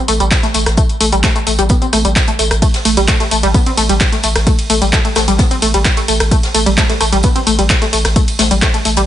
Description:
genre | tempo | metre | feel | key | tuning
driving peak-time techno | 130 BPM | 4/4 | straight | A minor | A4 = 441 Hz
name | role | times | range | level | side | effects
tight sequenced synth | riff | 0.1-9.0 s | G3 to C4 | -16 LUFS | equal | chorus, tube saturation, sidechain pumping, ping-pong delay
saturated sub bass | bass | 0.1-9.1 s | A1 | -17 LUFS | equal | overdrive, sidechain pumping, low-pass filter
punchy analog drum machine | drums | 0.1-9.1 s | handclaps, hi-hat, ride cymbal, rim click, tambourine | -16 LUFS | equal | none
tight funk drum kit | drums | 0.1-9.1 s | hi-hat, snare drum, tambourine | -25 LUFS | equal | none
electronic kick drum | drums | 0.3-8.7 s | none | -14 LUFS | equal | none
room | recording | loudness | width
light reverb, small room ambience | nothing above 10.7 kHz | -10 LUFS | side -11 dB against mid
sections
0.0-9.1 A section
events
none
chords
none

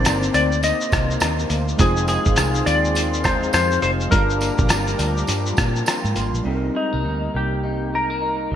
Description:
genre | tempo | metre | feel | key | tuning
indie pop, bedroom pop | 103 BPM | 4/4 | swing 60% on 16ths | C minor | A4 = 441 Hz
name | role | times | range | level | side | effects
clean lap steel guitar | melody | 0.0-8.5 s | Eb4 to Eb5 | -23 LUFS | left 2 dB | analog chorus, digital delay
electric guitar through a small old amp | accompaniment | 0.0-8.6 s | F2 to Eb4 | -27 LUFS | left 5 dB | lush chorus, warbly pitch drift
warbly lo-fi synth keys | accompaniment | 0.0-8.6 s | G3 to C6 | -28 LUFS | right 4 dB | chorus, cassette tape
warm analog pad | sustained chords | 0.0-6.4 s | G4 to D6 | -32 LUFS | equal | chorus, phaser
vintage muted fingered electric bass | bass | 0.0-8.6 s | F1 to Bb2 | -24 LUFS | equal | none
lo-fi sampler-style drum kit | drums | 0.1-6.5 s | hi-hat, kick drum, rim click, shaker | -22 LUFS | equal | gated reverb
tambourine | percussion | 0.1-6.3 s | none | -35 LUFS | right 6 dB | none
room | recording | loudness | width
moderate lush hall reverb, RT60 2.0 s, digital ambience | bright 1980s-style digital production | -17 LUFS | side -10 dB against mid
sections
0.0-6.5 A section; 6.5-8.6 B section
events
synth keys fill 5.6-6.5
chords
0.0 Cm9; 1.8 Fm7; 4.1 Gm7; 6.5 Cm7

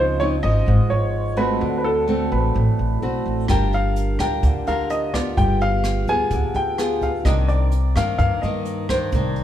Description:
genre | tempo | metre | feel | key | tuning
bossa nova | 128 BPM | 4/4 | straight | unclear | A4 = 440 Hz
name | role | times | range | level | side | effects
dark baby grand piano | melody | 0.0-9.4 s | A4 to Ab5 | -24 LUFS | equal | none
nylon-string guitar | accompaniment | 0.0-9.4 s | G2 to Bb4 | -25 LUFS | equal | none
vibraphone with soft mallets | accompaniment | 0.0-9.4 s | C4 to D6 | -30 LUFS | right 2 dB | none
upright bass | bass | 0.0-9.4 s | G1 to G2 | -22 LUFS | equal | none
jazz brush drum kit | drums | 3.5-9.4 s | hi-hat, kick drum, rim click | -25 LUFS | equal | none
room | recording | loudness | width
light reverb | heard from further back in the room | -18 LUFS | side -11 dB against mid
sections
0.0-9.4 A section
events
none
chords
0.0 Dbmaj9; 1.6 D7; 3.5 Gm7; 5.4 G7b9; 7.3 Cm9

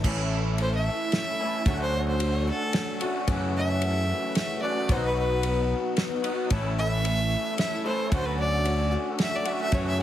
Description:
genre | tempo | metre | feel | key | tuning
folk rock and heartland rock | 111 BPM | 3/4 | straight | A major | A4 = 439 Hz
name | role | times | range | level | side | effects
picked twelve-string acoustic guitar | accompaniment | 0.0-10.0 s | F#2 to A4 | -32 LUFS | left 6 dB | none
electric guitar through a small old amp | riff | 0.0-10.0 s | F#2 to F#4 | -31 LUFS | right 1 dB | ensemble chorus
modern bright picked electric bass | bass | 0.0-10.0 s | A1 to F#2 | -27 LUFS | equal | none
loose indie drum kit | drums | 0.0-9.9 s | crash cymbal, kick drum, ride cymbal, snare drum | -31 LUFS | equal | none
rich fiddle | melody | 0.6-10.0 s | A4 to E5 | -29 LUFS | equal | none
room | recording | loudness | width
light reverb, small room ambience | heavily compressed radio sound | -24 LUFS | side -12 dB against mid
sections
0.0-10.0 A section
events
fiddle solo 0.0-10.0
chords
0.0 A; 1.7 Dmaj7; 3.3 F#m7; 4.9 B; 6.5 A; 8.1 Dmaj7

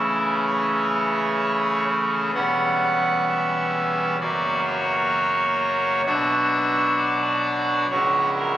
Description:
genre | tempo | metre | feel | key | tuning
classical, chorale-style piece for pipe organ | 64 BPM | 4/4 | rubato | B minor | A4 = 441 Hz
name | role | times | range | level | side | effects
pipe organ, trumpet | solo | 0.0-8.6 s | C#1 to F#5 | -19 LUFS | equal | none
room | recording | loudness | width
wet cathedral reverb, RT60 6.1 s | recorded on a phone in the room, club reverb, compression | -19 LUFS | side -13 dB against mid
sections
0.0-8.6 A section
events
none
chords
0.0 A/C#; 2.4 C#m7b5/E; 4.2 F#; 6.1 Bm; 7.9 F#7/C#

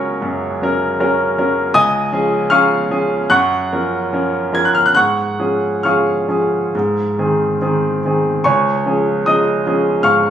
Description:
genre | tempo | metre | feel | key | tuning
classical, romantic character piece for solo piano | 67-81 BPM | 4/4 | rubato | Db major | A4 = 439 Hz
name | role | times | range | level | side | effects
clear concert grand piano | solo | 0.0-10.3 s | Db2 to Ab6 | -14 LUFS | equal | none
room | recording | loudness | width
light reverb | recorded on a phone in the room, studio ambience, compression | -14 LUFS | side -9 dB against mid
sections
0.0-10.3 A section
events
none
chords
0.0 Gb/Db; 1.7 Db; 3.3 Gbmaj7; 5.0 Db/Ab; 6.7 Ab; 8.4 Db

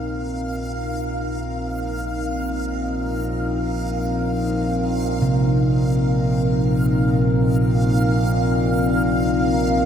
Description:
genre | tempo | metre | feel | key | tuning
dark ambient drone | free time | none | none | unclear | A4 = 442 Hz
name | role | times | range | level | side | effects
dark analog pad | sustained chords | 0.0-9.9 s | C4 to Bb4 | -24 LUFS | left 1 dB | wide subtle chorus, shimmer reverb
deep rumbling drone | drone | 0.0-9.9 s | Bb1 to Bb2 | -22 LUFS | equal | built-in reverb
backwards swelling texture | texture | 0.0-9.9 s | F5 | -28 LUFS | right 2 dB | built-in reverb, shimmer reverb
gamelan-type bossed gongs | arpeggios | 5.2-9.9 s | C3 | -22 LUFS | right 1 dB | ping-pong delay
room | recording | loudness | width
wet huge ambient reverb, RT60 8.8 s | none | -18 LUFS | side -8 dB against mid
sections
0.0-9.9 A section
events
fade-in on synth drone 0.0-9.9; fade-in on analog synth pad 0.0-9.9; fade-in on synth texture 0.0-9.9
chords
0.0 Bbsus2

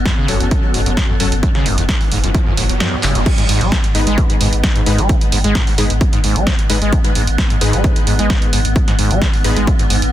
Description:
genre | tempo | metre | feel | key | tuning
driving peak-time techno | 131 BPM | 4/4 | straight | G# phrygian | A4 = 440 Hz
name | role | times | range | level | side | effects
warm sub bass | bass | 0.0-10.1 s | F#1 to G#1 | -18 LUFS | equal | tube saturation, sidechain pumping, low-pass filter
swarming drone | drone | 0.0-10.1 s | G#2 to B3 | -24 LUFS | equal | built-in reverb, sidechain pumping
riser | sound effects | 1.4-3.3 s | none | -27 LUFS | right 1 dB | none
overdriven acid bass | riff | 0.1-10.0 s | F#1 to G#3 | -20 LUFS | equal | lush chorus, sidechain pumping, digital delay
electronic kick drum | drums | 0.1-9.8 s | none | -16 LUFS | equal | overdrive
punchy analog drum machine | drums | 0.1-10.1 s | crash cymbal, handclaps, hi-hat, snare drum | -21 LUFS | right 2 dB | sidechain pumping on hats, sidechain pumping on cymbals
supersaw stab | stabs | 0.3-9.6 s | F#3 to B4 | -24 LUFS | left 4 dB | sidechain pumping, digital delay
room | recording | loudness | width
digital ambience | dense, heavily limited modern master | -12 LUFS | side -12 dB against mid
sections
0.0-3.3 A section; 3.3-10.1 B section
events
riser 1.4-3.3; kick drops out 2.8-3.3; drum fill 3.0; drop 3.3-10.1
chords
0.0 F#m; 3.3 G#m

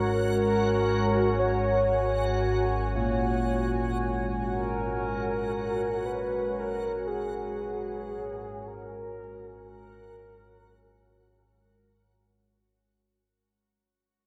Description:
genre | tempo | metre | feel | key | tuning
dark ambient drone | free time | none | none | unclear | A4 = 439 Hz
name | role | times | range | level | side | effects
mellow horn-like synth lead | melody | 0.0-11.2 s | G#4 to C#5 | -33 LUFS | equal | chorus, cassette tape, tape echo
deep dark ambient pad | sustained chords | 0.0-12.9 s | G#3 to G#5 | -33 LUFS | equal | chorus, built-in reverb
dark baby grand piano | arpeggios | 0.0-12.9 s | A#2 | -38 LUFS | equal | tape echo
analog drone | drone | 0.0-13.0 s | G#1 to G#2 | -36 LUFS | equal | subtle chorus
backwards swelling texture | texture | 0.0-12.9 s | F#4 | -38 LUFS | equal | built-in reverb
room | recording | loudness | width
wet cathedral reverb, RT60 5.8 s | none | -28 LUFS | mono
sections
0.0-12.9 A section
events
filter sweep on synth drone 0.0-12.9; fade-out 1.7-12.9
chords
0.0 F#add9/G#

